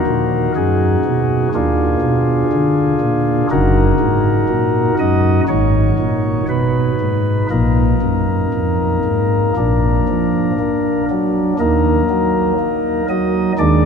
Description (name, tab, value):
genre	classical, chorale-style piece for pipe organ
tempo	60 BPM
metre	4/4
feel	straight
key	Eb minor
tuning	A4 = 442 Hz
part	pipe organ, flutes	solo	0.0-13.9 s	Gb1 to Eb5	-14 LUFS	equal	none
room	wet cathedral reverb, RT60 5.9 s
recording	minimal, uncompressed stereo recording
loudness	-14 LUFS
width	side -6 dB against mid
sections	0.0-13.9 A section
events	none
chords	0.0 Ebm; 1.5 Bb7/Eb; 3.5 Ebm/Gb; 5.5 Abm; 7.5 Bbsus4; 9.6 Bb; 11.6 Ebm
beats	0.55 1.53 2.52 | 3.50 4.49 5.48 6.48 | 7.50 8.53 9.56 10.58 | 11.60 12.60 13.60